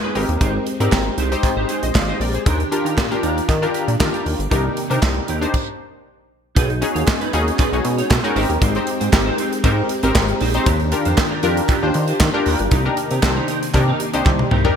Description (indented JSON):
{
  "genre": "early-eighties boogie funk",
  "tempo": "117 BPM",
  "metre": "4/4",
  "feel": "straight",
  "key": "unclear",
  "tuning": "A4 = 440 Hz",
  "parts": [
    { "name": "funky polysynth comp", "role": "accompaniment", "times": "0.0-14.8 s", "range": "C4 to F5", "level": "-22 LUFS", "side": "left 2 dB", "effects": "chorus" },
    { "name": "string machine, violins", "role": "sustained chords", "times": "0.0-14.8 s", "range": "C3 to G4", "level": "-27 LUFS", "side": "equal", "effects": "ensemble chorus" },
    { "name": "semi-hollow electric guitar", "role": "riff", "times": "0.0-14.8 s", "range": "D4 to D5", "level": "-26 LUFS", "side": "right 3 dB", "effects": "analog chorus" },
    { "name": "chorused synth bass", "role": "bass", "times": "0.2-14.7 s", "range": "G1 to Eb3", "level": "-21 LUFS", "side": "equal", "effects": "none" },
    { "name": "modern studio drum kit", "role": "drums", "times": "0.2-14.8 s", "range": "crash cymbal, handclaps, hi-hat, kick drum, snare drum, toms", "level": "-20 LUFS", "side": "equal", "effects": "gated reverb" },
    { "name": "group handclap", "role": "percussion", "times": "0.9-14.4 s", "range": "none", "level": "-31 LUFS", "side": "right 7 dB", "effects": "none" }
  ],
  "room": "moderate plate reverb, RT60 1.4 s, studio ambience",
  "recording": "bright 1980s-style digital production",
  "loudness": "-16 LUFS",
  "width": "side -7 dB against mid",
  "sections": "0.0-6.6 A section; 6.6-14.8 B section",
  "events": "stop 5.5-6.6; drum fill 14.3-14.8",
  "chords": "0.2 Abmaj7; 2.5 Ebmaj7; 4.5 Cm7; 5.5 N.C.; 6.6 B6; 8.4 Abmaj7; 10.7 Ebmaj7; 12.7 Cm7",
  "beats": "| 0.41 0.92 1.44 1.95 | 2.46 2.97 3.49 4.00 | 4.51 5.03 5.54 6.05 | 6.56 7.08 7.59 8.10 | 8.62 9.13 9.64 10.15 | 10.67 11.18 11.69 12.21 | 12.72 13.23 13.74 14.26"
}